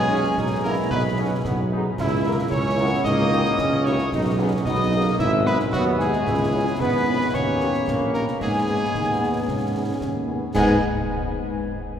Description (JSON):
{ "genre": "military-style march for wind band", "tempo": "112 BPM", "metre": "2/4", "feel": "straight", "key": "G# minor", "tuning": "A4 = 439 Hz", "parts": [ { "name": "clear cornet", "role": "melody", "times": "0.0-10.8 s", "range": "F#4 to E5", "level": "-29 LUFS", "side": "equal", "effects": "none" }, { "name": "mellow wooden piccolo", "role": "second line", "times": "0.0-10.8 s", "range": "F#5 to E6", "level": "-30 LUFS", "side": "left 2 dB", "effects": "none" }, { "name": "warm euphonium", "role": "second line", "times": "0.0-10.8 s", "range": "F#3 to E4", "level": "-27 LUFS", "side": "right 1 dB", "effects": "none" }, { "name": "mellow trombone section", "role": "sustained chords", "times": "0.0-10.8 s", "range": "G#3 to E4", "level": "-28 LUFS", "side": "right 1 dB", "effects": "none" }, { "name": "mellow tuba", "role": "bass", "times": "0.0-10.8 s", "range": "G#1 to G#2", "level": "-24 LUFS", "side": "right 1 dB", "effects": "none" }, { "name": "mellow French horn section", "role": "accompaniment", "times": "0.1-10.8 s", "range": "A#3 to A#4", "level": "-31 LUFS", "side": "left 2 dB", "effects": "none" }, { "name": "concert snare drum, concert bass drum and clash cymbals", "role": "drums", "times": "0.4-10.8 s", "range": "none", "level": "-30 LUFS", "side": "equal", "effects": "none" } ], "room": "wet cathedral reverb, RT60 5.8 s", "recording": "recorded in a church or concert hall", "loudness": "-19 LUFS", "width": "side -9 dB against mid", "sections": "0.0-10.5 A section; 10.5-11.6 B section", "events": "none", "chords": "0.0 G#m/B; 2.0 A#dim/C#; 3.1 D#7/C#; 4.1 G#m/B; 5.2 G#m; 6.3 C#m; 7.3 D#7; 8.4 G#m" }